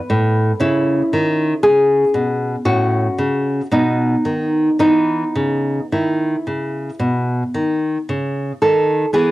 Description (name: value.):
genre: classical, baroque-style dance for nylon-string guitar.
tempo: 54-60 BPM.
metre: 4/4.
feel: rubato.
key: E major.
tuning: A4 = 440 Hz.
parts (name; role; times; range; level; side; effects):
nylon-string guitar; solo; 0.0-9.3 s; A2 to B4; -15 LUFS; equal; none.
room: moderate small room reverb, RT60 0.5 s.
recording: home recording on cassette.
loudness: -15 LUFS.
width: side -17 dB against mid.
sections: 0.0-9.1 A section.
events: none.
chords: 0.0 N.C.; 0.6 C#m; 2.6 F#m/A; 3.7 B; 4.8 E5.